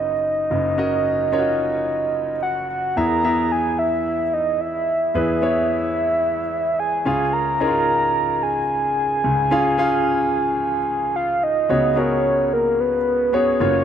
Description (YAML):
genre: pop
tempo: 110 BPM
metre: 4/4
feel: straight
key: unclear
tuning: A4 = 440 Hz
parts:
  - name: soft octave-layered synth lead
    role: melody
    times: 0.0-13.8 s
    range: A#4 to A#5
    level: -20 LUFS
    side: right 1 dB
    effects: chorus, ping-pong delay
  - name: warm concert grand piano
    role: accompaniment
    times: 0.0-13.8 s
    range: F#1 to E#5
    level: -22 LUFS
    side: left 1 dB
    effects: none
room: moderate lush hall reverb, RT60 2.3 s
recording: none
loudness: -18 LUFS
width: side -9 dB against mid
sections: 0.0-3.0 A section; 3.0-11.7 B section; 11.7-13.8 C section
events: none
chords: 0.0 D#m7/F#; 3.0 E; 7.1 C#; 11.7 C#7sus4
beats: 0.24 | 0.78 1.33 1.88 2.42 | 2.97 3.51 4.06 4.60 | 5.15 5.69 6.24 6.78 | 7.33 7.88 8.42 8.97 | 9.51 10.06 10.60 11.15 | 11.69 12.24 12.78 13.33